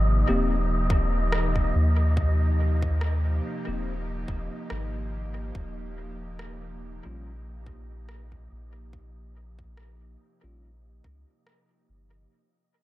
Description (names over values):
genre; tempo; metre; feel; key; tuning
ambient dub; 71 BPM; 4/4; swing 55% on 16ths; Eb major; A4 = 438 Hz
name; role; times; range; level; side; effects
airy breathy pad; sustained chords; 0.0-12.3 s; C3 to G4; -34 LUFS; equal; chorus
soft dub sub bass; bass; 0.0-12.3 s; Eb1 to Eb2; -26 LUFS; equal; none
wind-like tuned noise texture; texture; 0.0-12.3 s; Eb5; -36 LUFS; equal; built-in reverb
bell-like tine electric piano; stabs; 0.3-10.7 s; G3 to G4; -32 LUFS; left 3 dB; phaser, low-pass filter, dub echo
electronic kick drum; drums; 0.9-11.2 s; none; -28 LUFS; equal; none
electronic rim click; drums; 1.3-11.7 s; none; -36 LUFS; equal; dub echo
room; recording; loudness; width
digital ambience; echo-heavy mix; -23 LUFS; side -16 dB against mid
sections
0.0-12.3 A section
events
fade-out 0.0-12.3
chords
0.0 Abmaj7; 5.5 Ebadd9